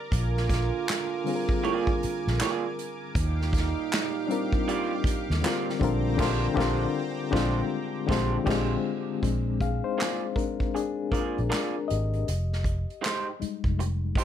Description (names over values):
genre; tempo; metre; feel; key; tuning
R&B, neo-soul; 79 BPM; 4/4; swing 62% on 16ths; unclear; A4 = 440 Hz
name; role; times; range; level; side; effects
reed electric piano; accompaniment; 0.0-14.2 s; D3 to F5; -29 LUFS; left 7 dB; tremolo, plate reverb
lush unison pad; sustained chords; 0.0-9.2 s; G4 to D6; -37 LUFS; equal; chorus, plate reverb
dark trombone section; stabs; 0.1-8.7 s; Ab2 to G4; -34 LUFS; right 9 dB; tape echo, plate reverb
vintage muted fingered electric bass; bass; 0.1-14.2 s; F1 to Eb2; -28 LUFS; equal; none
unplugged drum kit; drums; 0.1-14.2 s; crash cymbal, handclaps, hi-hat, kick drum, snare drum; -29 LUFS; right 1 dB; none
electric guitar through a small old amp; second line; 1.6-14.2 s; Ab3 to D5; -31 LUFS; right 6 dB; plate reverb
room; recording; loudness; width
moderate small room reverb, RT60 0.5 s; none; -25 LUFS; side -10 dB against mid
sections
0.0-9.2 A section; 9.2-14.2 B section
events
band accent 6.2-9.2; reed electric piano solo 9.2-14.2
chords
0.1 Bb7; 3.2 Ebmaj9; 5.8 Bb13; 9.2 Bb7; 12.3 Fm9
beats
| 0.11 0.87 1.63 2.39 | 3.15 3.91 4.67 5.43 | 6.19 6.95 7.71 8.47 | 9.23 9.99 10.75 11.51 | 12.27 13.03 13.78